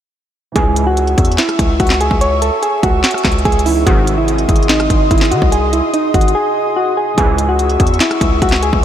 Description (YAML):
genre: hip hop, trap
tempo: 145 BPM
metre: 4/4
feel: half-time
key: C# harmonic minor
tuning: A4 = 441 Hz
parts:
  - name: dark grand piano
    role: accompaniment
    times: 0.5-8.8 s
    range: B#2 to G#4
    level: -27 LUFS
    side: right 5 dB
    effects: wide subtle chorus
  - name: soft electric-piano-like synth keys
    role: melody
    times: 0.6-8.8 s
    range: D#4 to C#5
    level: -16 LUFS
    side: right 1 dB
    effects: chorus, tape echo
  - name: glassy FM pad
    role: sustained chords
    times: 1.0-8.8 s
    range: G#4 to E6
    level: -20 LUFS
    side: equal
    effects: ensemble chorus, built-in reverb
  - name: sync-sweep polysynth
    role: stabs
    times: 0.6-0.9, 3.9-4.2, 7.2-7.5 s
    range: B#1 to E3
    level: -26 LUFS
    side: equal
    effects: chorus, tape echo
  - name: distorted 808-style bass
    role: bass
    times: 0.6-8.8 s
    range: G#1 to D#3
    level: -16 LUFS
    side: equal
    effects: distortion
  - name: trap drum kit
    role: drums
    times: 0.6-8.8 s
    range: handclaps, hi-hat, kick drum, rim click, snare drum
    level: -15 LUFS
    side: equal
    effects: none
room: moderate huge ambient reverb, RT60 5.9 s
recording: dreamy mix soaked in reverb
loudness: -11 LUFS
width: side -10 dB against mid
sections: 0.6-8.8 A section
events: silent gap 6.3-7.2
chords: 0.6 C#m; 3.9 G#; 7.2 C#m